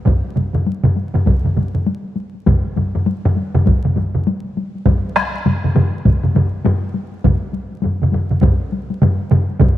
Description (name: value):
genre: japanese traditional, taiko drum ensemble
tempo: 100 BPM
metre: 4/4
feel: swing 60% on 16ths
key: none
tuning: none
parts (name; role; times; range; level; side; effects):
- solo taiko drums; percussion; 0.1-9.8 s; none; -22 LUFS; left 5 dB; none
- solo taiko drums; percussion; 0.1-9.8 s; none; -18 LUFS; left 1 dB; none
- solo taiko drums; percussion; 0.1-9.8 s; none; -17 LUFS; right 1 dB; none
- taiko ensemble; percussion; 0.1-9.8 s; none; -19 LUFS; right 3 dB; none
room: light reverb, studio ambience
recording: home recording on cassette, vinyl crackle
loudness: -15 LUFS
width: side -13 dB against mid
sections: 0.1-9.8 A section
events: none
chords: none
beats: | 0.06 0.67 1.27 1.87 | 2.47 3.07 3.67 4.26 | 4.86 5.46 6.05 6.65 | 7.24 7.84 8.43 9.02 | 9.61